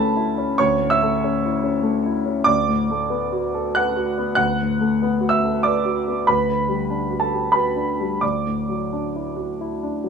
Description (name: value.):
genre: neoclassical minimalist piano.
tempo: 95 BPM.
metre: 3/4.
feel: rubato.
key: unclear.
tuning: A4 = 440 Hz.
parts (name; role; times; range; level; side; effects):
warm grand piano; solo; 0.0-10.1 s; D2 to F#6; -18 LUFS; equal; none.
room: light reverb.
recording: minimal, uncompressed stereo recording.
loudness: -18 LUFS.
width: side -6 dB against mid.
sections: 0.0-10.1 A section.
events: none.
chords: 0.0 A/D; 2.5 Bm7/D; 6.3 Gmaj7/D; 8.2 Dadd9.